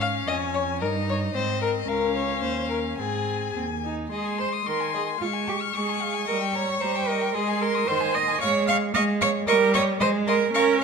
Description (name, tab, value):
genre	quick classical-period movement for string quartet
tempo	112 BPM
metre	2/4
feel	straight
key	Ab major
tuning	A4 = 440 Hz
part	rich violin	melody	0.0-10.6 s	Eb5 to Db6	-29 LUFS	left 12 dB	none
part	warm violin	second line	0.0-10.8 s	Ab4 to F6	-30 LUFS	left 6 dB	none
part	clear viola	accompaniment	0.0-10.8 s	Eb3 to Eb4	-28 LUFS	right 2 dB	none
part	rich cello	bass	0.0-10.8 s	Db2 to F5	-25 LUFS	right 5 dB	none
room	moderate recital hall reverb, RT60 1.4 s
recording	none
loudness	-22 LUFS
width	side -5 dB against mid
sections	0.0-4.1 A section; 4.1-10.8 B section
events	none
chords	0.0 Db/Ab; 0.8 Eb/G; 1.3 Ab; 1.9 Bbm/Db; 2.4 Eb5; 3.0 Ab; 5.2 Db/Ab; 6.3 Eb7/G; 7.4 Ab; 8.4 Db/Ab; 9.5 Eb7/G (rootless); 10.0 Ab